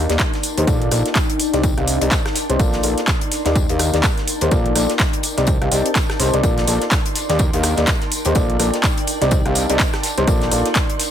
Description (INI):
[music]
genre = piano house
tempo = 125 BPM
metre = 4/4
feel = swing 58% on 16ths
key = Bb major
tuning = A4 = 441 Hz
[part]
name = clear grand piano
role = riff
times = 0.0-10.7 s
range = Bb3 to F5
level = -22 LUFS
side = left 2 dB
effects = sidechain pumping, low-pass filter, tape echo
[part]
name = fat analog bass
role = bass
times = 0.0-10.6 s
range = Bb1 to Eb2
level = -21 LUFS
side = right 1 dB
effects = tube saturation, sidechain pumping
[part]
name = granular cloud pad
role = texture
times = 0.0-11.1 s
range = Eb4 to C6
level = -25 LUFS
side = left 1 dB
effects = built-in reverb, sidechain pumping
[part]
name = garage drum kit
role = drums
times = 0.1-11.1 s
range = handclaps, hi-hat, rim click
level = -22 LUFS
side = equal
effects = none
[part]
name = tight funk drum kit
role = drums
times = 0.1-11.1 s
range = hi-hat, snare drum, tambourine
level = -29 LUFS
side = left 3 dB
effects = sidechain pumping on hats, high-pass filter on hats, high-pass filter on snare, sidechain pumping on perc, high-pass filter on perc, high-pass filter on room
[part]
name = electronic kick drum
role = drums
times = 0.2-10.9 s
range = none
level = -20 LUFS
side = equal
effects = none
[sound]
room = light reverb, small room ambience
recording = none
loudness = -15 LUFS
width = side -9 dB against mid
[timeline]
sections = 0.0-11.1 A section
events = none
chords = 0.0 Ebmaj7; 0.7 Bbmaj7; 1.4 Cmadd9; 2.6 Bbmaj7; 3.3 Ebmaj7; 4.5 Bbmaj7; 5.2 Cmadd9; 6.4 Bbmaj7; 7.2 Ebmaj7; 8.4 Bbmaj7; 9.1 Cmadd9; 10.3 Bbmaj7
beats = 0.20 | 0.68 1.16 1.64 2.12 | 2.60 3.08 3.56 4.04 | 4.51 5.00 5.47 5.96 | 6.43 6.92 7.39 7.88 | 8.36 8.84 9.31 9.79 | 10.28 10.76